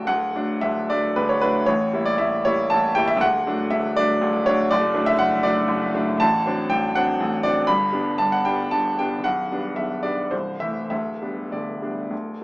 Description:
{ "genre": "classical, romantic character piece for solo piano", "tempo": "98-124 BPM", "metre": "3/4", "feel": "rubato", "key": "D major, G major from 6.2 s", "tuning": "A4 = 443 Hz", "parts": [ { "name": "bright baby grand piano", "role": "solo", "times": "0.0-12.4 s", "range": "B0 to D6", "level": "-19 LUFS", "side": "equal", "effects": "none" } ], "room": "light reverb", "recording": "small speaker sound", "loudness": "-19 LUFS", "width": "side -22 dB against mid", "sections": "0.1-12.4 A section", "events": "none", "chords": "0.1 D; 1.7 A5; 3.2 D; 4.7 D/F#; 6.2 D7/A; 7.7 G; 9.2 G/B; 10.3 Am/C; 10.9 G/D" }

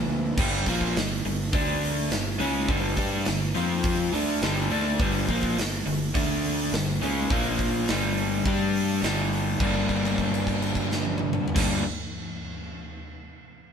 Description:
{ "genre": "classic rock", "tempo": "104 BPM", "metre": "4/4", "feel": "straight", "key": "G minor", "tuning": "A4 = 439 Hz", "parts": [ { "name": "crunchy overdriven guitar", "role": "riff", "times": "0.0-11.8 s", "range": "G2 to G4", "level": "-25 LUFS", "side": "left 1 dB", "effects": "none" }, { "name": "fuzz fingered electric bass", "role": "bass", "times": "0.1-11.8 s", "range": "G1 to G2", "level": "-31 LUFS", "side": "equal", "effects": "overdrive" }, { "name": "huge arena drum kit", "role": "drums", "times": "0.4-11.7 s", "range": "crash cymbal, hi-hat, kick drum, snare drum, toms", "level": "-28 LUFS", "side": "equal", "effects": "none" } ], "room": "moderate small room reverb, RT60 0.5 s", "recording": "band playing live in one room", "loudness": "-23 LUFS", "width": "side -7 dB against mid", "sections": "0.4-9.6 A section; 9.6-11.9 B section", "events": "held note 9.6-11.6", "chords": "0.4 Gm; 1.5 D5; 2.1 G5; 3.6 F5; 4.1 Gm; 6.1 D5; 6.7 G5; 7.3 Bb5; 7.9 G5; 9.6 Gm" }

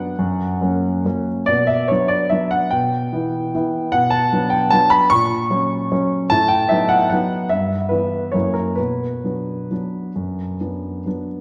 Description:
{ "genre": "classical, piano waltz", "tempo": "127-159 BPM", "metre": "3/4", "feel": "rubato", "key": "B minor", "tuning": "A4 = 437 Hz", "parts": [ { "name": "warm grand piano", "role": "solo", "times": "0.0-11.4 s", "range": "F#2 to C#6", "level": "-19 LUFS", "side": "equal", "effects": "none" } ], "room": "wet scoring stage reverb, RT60 1.9 s", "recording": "recorded in a church or concert hall", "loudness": "-19 LUFS", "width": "mono", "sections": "0.0-11.4 A section", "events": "none", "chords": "0.2 F#; 1.5 Bm; 2.7 Em/B; 3.9 Bm; 5.1 F#/A#; 6.3 B7/A; 7.5 Em/G; 8.3 F#7; 8.8 Bm" }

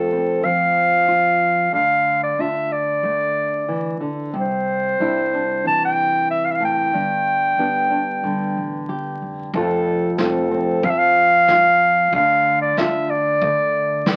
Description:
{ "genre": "acoustic folk duo or small band", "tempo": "92 BPM", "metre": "4/4", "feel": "straight", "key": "unclear", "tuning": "A4 = 440 Hz", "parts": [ { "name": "warm clarinet", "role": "melody", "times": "0.0-14.2 s", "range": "A4 to A5", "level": "-19 LUFS", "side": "equal", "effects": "none" }, { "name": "nylon-string guitar", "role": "accompaniment", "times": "0.0-14.2 s", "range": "F2 to G4", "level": "-27 LUFS", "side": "equal", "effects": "none" }, { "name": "upright bass", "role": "bass", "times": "0.0-14.2 s", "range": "F1 to D3", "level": "-34 LUFS", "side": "equal", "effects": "none" }, { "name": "soft brush drum kit", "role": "drums", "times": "9.5-14.2 s", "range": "kick drum, snare drum", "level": "-27 LUFS", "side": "equal", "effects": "none" } ], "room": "moderate studio reverb, RT60 0.6 s", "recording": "very old 78 rpm record, vinyl crackle", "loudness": "-19 LUFS", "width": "mono", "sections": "0.0-9.5 A section; 9.5-14.2 A section", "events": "none", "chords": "0.0 F; 1.7 Dm; 4.3 Cadd9; 6.9 G; 9.5 F; 12.1 Dm" }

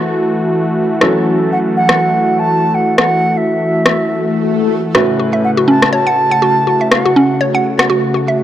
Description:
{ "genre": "afro house", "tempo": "122 BPM", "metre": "4/4", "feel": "swing 56% on 16ths", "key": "F# minor", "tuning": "A4 = 439 Hz", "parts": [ { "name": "warm analog pad", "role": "sustained chords", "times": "0.0-8.4 s", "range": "C#3 to F#4", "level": "-16 LUFS", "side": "equal", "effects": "chorus" }, { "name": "felt-muted upright piano", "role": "stabs", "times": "0.0-8.4 s", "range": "A2 to B4", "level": "-21 LUFS", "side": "right 1 dB", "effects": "low-pass filter, tape echo" }, { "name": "electronic rim click", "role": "drums", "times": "1.0-7.9 s", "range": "none", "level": "-15 LUFS", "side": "left 1 dB", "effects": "low-pass filter on snare, low-pass filter on room" }, { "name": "silver concert flute", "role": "melody", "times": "1.5-7.4 s", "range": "E5 to A5", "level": "-15 LUFS", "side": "right 1 dB", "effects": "tape echo" }, { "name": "swell", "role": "sound effects", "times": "4.1-4.9 s", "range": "none", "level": "-18 LUFS", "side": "left 8 dB", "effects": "none" }, { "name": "mallet-like synth pluck", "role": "arpeggios", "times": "4.9-8.4 s", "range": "C#4 to F#5", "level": "-14 LUFS", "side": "right 1 dB", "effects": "chorus, tape echo" } ], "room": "light reverb", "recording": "dry, gritty hardware recording", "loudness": "-11 LUFS", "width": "side -11 dB against mid", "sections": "0.0-8.4 A section", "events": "swell 4.1-4.9", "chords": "0.0 F#m7; 4.9 A6" }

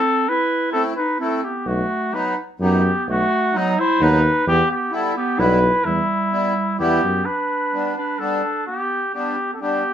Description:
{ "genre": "alpine folk, alpine dance band", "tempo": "128 BPM", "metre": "3/4", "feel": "straight", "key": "E harmonic minor", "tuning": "A4 = 440 Hz", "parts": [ { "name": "clear flugelhorn", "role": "melody", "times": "0.0-9.9 s", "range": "D#4 to C5", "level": "-20 LUFS", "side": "left 1 dB", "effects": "none" }, { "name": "warm clarinet", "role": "second line", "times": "0.0-9.9 s", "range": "F#3 to E4", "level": "-25 LUFS", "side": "right 2 dB", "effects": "none" }, { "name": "accordion", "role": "accompaniment", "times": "0.7-9.8 s", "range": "F#3 to E4", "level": "-24 LUFS", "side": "equal", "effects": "light tremolo tuning" }, { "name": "warm tuba", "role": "bass", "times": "1.7-7.2 s", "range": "B1 to F#2", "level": "-20 LUFS", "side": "equal", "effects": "none" } ], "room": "wet studio reverb, RT60 0.6 s", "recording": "band playing live in one room", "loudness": "-17 LUFS", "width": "side -9 dB against mid", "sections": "0.0-7.3 A section; 7.3-9.9 B section", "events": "none", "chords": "0.0 Am; 1.7 B7; 4.5 Em; 7.3 G" }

